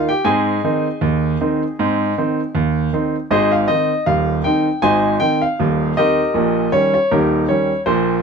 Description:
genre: ragtime piano.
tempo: 79 BPM.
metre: 2/4.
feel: swing 55% on 16ths.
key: Ab major.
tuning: A4 = 437 Hz.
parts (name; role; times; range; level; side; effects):
bright grand piano; solo; 0.0-8.2 s; Eb1 to Ab5; -15 LUFS; right 1 dB; none.
room: moderate small room reverb, RT60 0.5 s.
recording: dark, warm production.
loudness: -15 LUFS.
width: side -5 dB against mid.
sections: 0.0-3.3 A section; 3.3-8.2 B section.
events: none.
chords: 0.3 Ab; 6.4 Eb7.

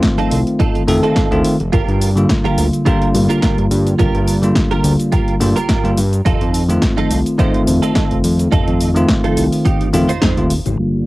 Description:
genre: nu-disco, nu disco.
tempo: 106 BPM.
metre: 4/4.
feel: swing 54% on 16ths.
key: unclear.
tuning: A4 = 436 Hz.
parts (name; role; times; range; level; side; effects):
bell-like tine electric piano; accompaniment; 0.0-11.1 s; D3 to A4; -16 LUFS; equal; sidechain pumping, cassette tape.
electronic kick drum; drums; 0.0-10.3 s; none; -18 LUFS; equal; cassette tape.
house drum kit; drums; 0.0-10.8 s; hi-hat, shaker, snare drum; -22 LUFS; equal; cassette tape.
direct-recorded clean electric guitar; riff; 0.2-10.4 s; Eb4 to C5; -22 LUFS; right 6 dB; ensemble chorus, cassette tape, analog delay.
congas; percussion; 0.2-10.8 s; none; -28 LUFS; left 6 dB; none.
fat analog bass; bass; 0.3-11.1 s; Eb1 to G2; -17 LUFS; equal; none.
lush unison pad; sustained chords; 10.9-11.1 s; Bb3 to F5; -28 LUFS; right 2 dB; chorus, vintage 12-bit sampler grit, sidechain pumping, cassette tape.
room: moderate booth ambience, RT60 0.2 s.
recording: home recording on cassette, low-pass filter.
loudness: -12 LUFS.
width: side -18 dB against mid.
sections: 0.0-10.8 A section.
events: band accent 10.2.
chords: 0.0 F7; 1.7 Gm7; 6.3 F7.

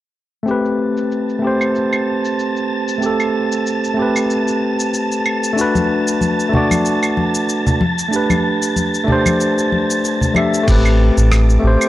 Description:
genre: sunset chillout.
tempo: 94 BPM.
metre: 4/4.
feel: swing 55% on 16ths.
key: A dorian.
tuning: A4 = 441 Hz.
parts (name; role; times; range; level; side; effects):
bright tine electric piano; accompaniment; 0.4-11.9 s; A3 to E5; -17 LUFS; moving between left 3 dB and right 4 dB; auto-pan, low-pass filter, tape echo.
dusty soul sampler-style drum kit; drums; 0.5-11.9 s; claves, crash cymbal, rim click, shaker; -23 LUFS; right 1 dB; overdrive, low-pass filter on perc, studio reverb, low-pass filter on cymbals, low-pass filter on snare.
wind-like tuned noise texture; texture; 1.1-11.9 s; A5 to D7; -23 LUFS; right 1 dB; built-in reverb.
congas; percussion; 5.8-10.5 s; none; -19 LUFS; left 1 dB; none.
round analog bass; bass; 10.7-11.8 s; A1; -12 LUFS; equal; none.
electronic kick drum; drums; 10.7-10.8 s; none; -16 LUFS; equal; overdrive, studio reverb.
room: little or no reverb.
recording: dry, gritty hardware recording, cassette tape.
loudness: -14 LUFS.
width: side -14 dB against mid.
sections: 0.5-10.7 A section; 10.7-11.9 B section.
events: filter sweep on tine electric piano 0.5-10.7.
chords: 0.5 Am9; 5.6 Bm7; 7.8 D7sus4; 10.7 Am9.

